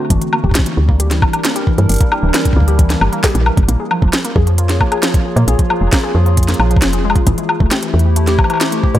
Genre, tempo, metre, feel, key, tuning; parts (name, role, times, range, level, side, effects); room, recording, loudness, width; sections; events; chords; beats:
IDM; 134 BPM; 4/4; straight; A4 = 440 Hz
warbly tape-like pad; sustained chords; 0.0-9.0 s; D3 to Db5; -22 LUFS; right 1 dB; chorus, built-in reverb, vintage 12-bit sampler grit
warbly dusty pluck; arpeggios; 0.0-9.0 s; E3 to Ab4; -21 LUFS; left 2 dB; chorus, tape echo
woody FM bass; bass; 0.1-9.0 s; D1 to Bb2; -14 LUFS; equal; tube saturation
electronic kick drum; drums; 0.1-8.9 s; -14 LUFS; equal
organic electronic drum kit; drums; 0.1-9.0 s; hi-hat, snare drum, woodblock; -18 LUFS; left 1 dB; tape echo
light reverb, digital ambience; echo-heavy mix; -11 LUFS; side -13 dB against mid
0.1-9.0 A section
0.1 Gm6; 3.7 Bbm7; 7.3 Am7
| 0.10 0.55 1.00 1.45 | 1.89 2.34 2.79 3.24 | 3.69 4.13 4.58 5.03 | 5.48 5.92 6.37 6.82 | 7.27 7.71 8.16 8.61